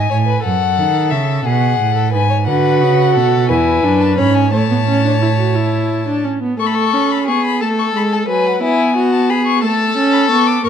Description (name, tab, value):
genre	classical, baroque-style fugue for string quartet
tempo	59 BPM (dotted quarters)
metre	6/8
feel	straight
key	A major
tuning	A4 = 440 Hz
part	rich violin	melody	0.0-10.7 s	E5 to D6	-19 LUFS	left 10 dB	none
part	dark violin	second line	0.0-10.7 s	E4 to D#5	-19 LUFS	left 4 dB	none
part	clear cello	bass	0.0-6.2, 10.7 s	E2 to D#3	-16 LUFS	right 5 dB	none
part	rich viola	accompaniment	2.5-10.7 s	F#3 to F#4	-16 LUFS	right 3 dB	none
room	moderate large studio reverb, RT60 1.4 s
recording	dark, warm production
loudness	-12 LUFS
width	side -8 dB against mid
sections	0.0-6.6 A section; 6.6-10.7 B section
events	none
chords	0.4 F#m7; 1.5 B5; 2.5 Bm7; 3.5 E; 4.5 A; 7.6 B5; 8.6 E/B; 9.6 A